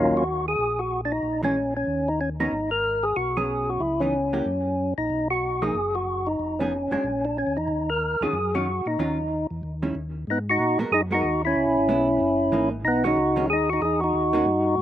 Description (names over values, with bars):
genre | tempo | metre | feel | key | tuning
soul jazz organ trio | 186 BPM | 4/4 | swing 61% on 8ths | Eb minor, G# minor from 10.3 s | A4 = 440 Hz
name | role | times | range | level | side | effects
percussive tonewheel organ | melody | 0.0-14.8 s | Eb2 to Bb4 | -22 LUFS | equal | slow rotary speaker, overdrive
tonewheel organ | bass | 0.0-14.8 s | F1 to Bb2 | -32 LUFS | equal | chorus vibrato, slow rotary speaker
vintage hollow-body jazz guitar | accompaniment | 1.4-14.5 s | Eb3 to A#4 | -29 LUFS | right 2 dB | none
room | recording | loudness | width
little or no reverb | recorded outdoors, with no room sound | -22 LUFS | side -11 dB against mid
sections
0.0-10.3 A section; 10.3-14.8 B section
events
none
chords
0.0 Ebm9; 1.2 Bbm7b5; 1.9 Ebm7; 2.5 Abm11; 3.8 Dbm9; 4.5 Gb; 5.1 B; 6.4 Fm7b5; 7.0 Bbmadd11; 7.7 Ebm9; 9.6 Eb7b9; 10.3 G#m9; 11.6 C#m7; 12.2 F#13; 12.8 B69; 14.1 D#m7